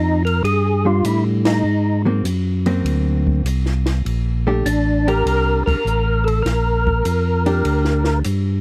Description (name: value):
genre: soul jazz organ trio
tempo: 100 BPM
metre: 4/4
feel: swing 69% on 8ths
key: Bb major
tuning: A4 = 438 Hz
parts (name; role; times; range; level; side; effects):
- percussive tonewheel organ; melody; 0.0-8.2 s; D4 to Bb4; -22 LUFS; equal; slow rotary speaker, overdrive, chorus vibrato
- tonewheel organ; bass; 0.0-8.6 s; A1 to A2; -21 LUFS; equal; overdrive, slow rotary speaker
- compact cocktail drum kit; drums; 0.3-8.4 s; hi-hat, kick drum, ride cymbal, snare drum; -30 LUFS; equal; none
- vintage hollow-body jazz guitar; accompaniment; 0.9-8.2 s; Gb3 to G4; -24 LUFS; equal; none
room: little or no reverb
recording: dry, close 1970s-style studio recording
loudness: -18 LUFS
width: mono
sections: 0.0-8.6 A section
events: band accent 1.3-1.6, 5.5-5.8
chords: 0.0 Ebmaj9; 1.6 Ab9; 4.0 Bbmaj13